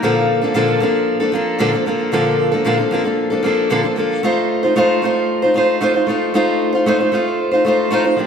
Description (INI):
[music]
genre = pop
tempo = 114 BPM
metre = 4/4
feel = straight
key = unclear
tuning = A4 = 440 Hz
[part]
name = fingerpicked steel-string acoustic guitar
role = solo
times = 0.0-8.3 s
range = Bb2 to C5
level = -14 LUFS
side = equal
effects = digital delay
[sound]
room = moderate scoring stage reverb, RT60 1.9 s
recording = none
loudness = -14 LUFS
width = side -7 dB against mid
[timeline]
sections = 0.0-8.3 A section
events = none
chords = 0.0 Bbmaj7; 4.2 F7/A